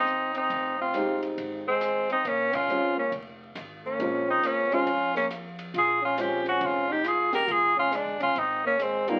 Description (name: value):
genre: jazz, small-group swing and bop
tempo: 138 BPM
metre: 4/4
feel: swing 65% on 8ths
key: unclear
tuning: A4 = 440 Hz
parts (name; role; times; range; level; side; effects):
- bright tenor saxophone; melody; 0.0-9.2 s; Bb3 to Bb4; -28 LUFS; equal; none
- warm trombone; second line; 0.0-9.2 s; G3 to G4; -33 LUFS; equal; none
- upright bass; bass; 0.0-9.2 s; F1 to F2; -50 LUFS; equal; none
- open jazz drum kit; drums; 0.1-9.1 s; hi-hat, kick drum, ride cymbal, rim click, snare drum; -44 LUFS; equal; none
- warm upright piano; accompaniment; 0.9-9.2 s; Ab3 to G4; -32 LUFS; equal; none
room: wet small room ambience, RT60 0.5 s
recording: very old 78 rpm record, vinyl crackle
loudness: -26 LUFS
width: mono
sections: 0.0-9.2 A section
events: band accent 2.5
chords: 0.0 Fm7; 2.3 Bbm9; 7.5 Fm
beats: 0.07 | 0.51 0.94 1.38 1.81 | 2.25 2.69 3.12 3.56 | 4.00 4.43 4.87 5.31 | 5.74 6.18 6.61 7.05 | 7.49 7.92 8.36 8.79